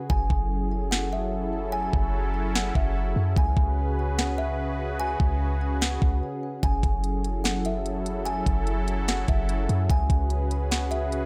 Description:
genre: hip hop, atmospheric cloud-rap.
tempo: 147 BPM.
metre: 4/4.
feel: half-time.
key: F# minor.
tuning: A4 = 441 Hz.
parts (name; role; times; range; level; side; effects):
sweeping resonant pad; sustained chords; 0.0-11.3 s; C#3 to B4; -34 LUFS; equal; chorus, sidechain pumping.
kalimba; melody; 0.1-11.1 s; E5 to G#5; -34 LUFS; equal; delay.
warm 808-style bass; bass; 0.1-11.3 s; F#1 to F#2; -29 LUFS; equal; none.
trap drum kit; drums; 0.1-11.2 s; hi-hat, kick drum, snare drum; -28 LUFS; equal; none.
room: little or no reverb.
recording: none.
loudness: -26 LUFS.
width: mono.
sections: 0.0-11.3 A section.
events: hi-hats muted 0.1-6.6; break 6.2-6.6.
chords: 0.1 F#m9; 3.4 C#7sus4; 6.6 F#m9; 9.9 C#7sus4.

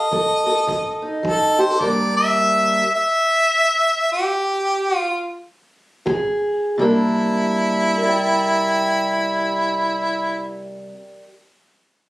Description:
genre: acoustic country blues, solo or duo.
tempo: 82-107 BPM.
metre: 4/4.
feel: swing 62% on 8ths.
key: C mixolydian.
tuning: A4 = 439 Hz.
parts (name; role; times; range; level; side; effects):
warm harmonica; melody; 0.0-10.5 s; E4 to E5; -18 LUFS; equal; none.
fingerpicked steel-string acoustic guitar; accompaniment; 0.0-11.3 s; C3 to G5; -21 LUFS; equal; none.
kick drum; drums; 0.1-2.0, 6.1-6.3 s; none; -32 LUFS; equal; none.
room: moderate small room reverb, RT60 0.6 s.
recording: recorded on a phone in the room, studio reverb, compression.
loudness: -16 LUFS.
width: side -18 dB against mid.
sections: 0.0-6.8 A section; 6.8-9.7 B section.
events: slowing down 1.8-6.8.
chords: 0.0 F7; 1.8 C9 (rootless); 6.1 Db5; 6.8 C9.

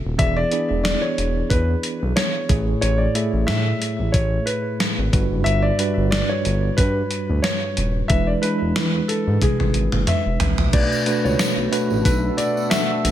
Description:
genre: 1980s-style pop.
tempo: 91 BPM.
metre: 4/4.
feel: swing 55% on 16ths.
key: unclear.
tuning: A4 = 440 Hz.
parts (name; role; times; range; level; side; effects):
tine electric piano; accompaniment; 0.0-13.1 s; G2 to E5; -24 LUFS; right 2 dB; fast stereo tremolo.
smooth gliding synth bass; bass; 0.1-13.1 s; D#1 to A2; -22 LUFS; equal; none.
warm concert grand piano; melody; 0.2-13.1 s; G#4 to E5; -25 LUFS; left 1 dB; ping-pong delay.
gated 80s digital drum machine; drums; 0.2-13.1 s; crash cymbal, hi-hat, kick drum, snare drum, toms; -21 LUFS; equal; gated reverb, gated reverb snare.
sweeping resonant pad; sustained chords; 10.7-13.1 s; A3 to A4; -29 LUFS; equal; chorus.
tambourine; percussion; 10.9-13.1 s; none; -35 LUFS; left 5 dB; none.
room: light reverb.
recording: none.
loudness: -18 LUFS.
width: side -11 dB against mid.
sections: 0.0-10.7 A section; 10.7-13.1 B section.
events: drum fill 9.4-10.7.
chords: 0.2 E7; 2.5 Amaj7; 5.1 Gmaj7; 8.1 E7; 10.7 Bm7.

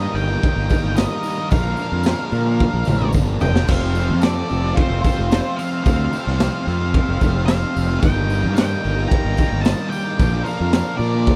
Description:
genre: classic rock.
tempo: 111 BPM.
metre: 4/4.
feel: straight.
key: F mixolydian.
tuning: A4 = 440 Hz.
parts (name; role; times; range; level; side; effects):
octave-fuzz lead guitar; melody; 0.0-11.4 s; C5 to Bb5; -30 LUFS; equal; distortion.
octave-fuzz lead guitar; second line; 0.0-11.4 s; F4 to G5; -33 LUFS; equal; distortion.
overdriven electric guitar; riff; 0.0-11.4 s; Bb2 to Bb4; -33 LUFS; equal; none.
overdriven semi-hollow guitar; riff; 0.0-11.4 s; F2 to Eb4; -29 LUFS; equal; none.
fuzz fingered electric bass; bass; 0.0-11.3 s; F1 to Bb2; -23 LUFS; equal; overdrive.
tambourine; percussion; 0.2-11.3 s; none; -46 LUFS; equal; none.
raw garage drum kit; drums; 0.4-11.4 s; crash cymbal, kick drum, snare drum, toms; -22 LUFS; equal; none.
room: little or no reverb.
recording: none.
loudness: -19 LUFS.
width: mono.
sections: 0.0-3.7 A section; 3.7-11.4 A section.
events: drum fill 2.6-3.7.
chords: 0.0 Eb/G; 1.5 Bb; 3.7 F; 8.0 Eb/G; 10.2 Bb.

